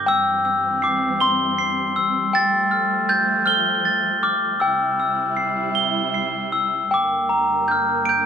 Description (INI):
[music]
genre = children's music, lullaby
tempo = 52 BPM (dotted quarters)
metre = 6/8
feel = straight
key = unclear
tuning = A4 = 441 Hz
[part]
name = glockenspiel with soft plastic mallets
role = melody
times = 0.0-8.3 s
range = G5 to G7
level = -18 LUFS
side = left 1 dB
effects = none
[part]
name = dark studio string section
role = sustained chords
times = 0.0-8.3 s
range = G2 to E4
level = -28 LUFS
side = right 2 dB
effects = none
[sound]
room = moderate recital hall reverb, RT60 1.6 s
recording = none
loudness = -18 LUFS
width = side -7 dB against mid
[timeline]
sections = 0.0-8.3 A section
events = none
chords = 0.1 C/G; 2.3 Fadd9; 4.6 C; 6.9 Gm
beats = | 0.06 1.19 | 2.32 3.46 | 4.60 5.75 | 6.91 8.07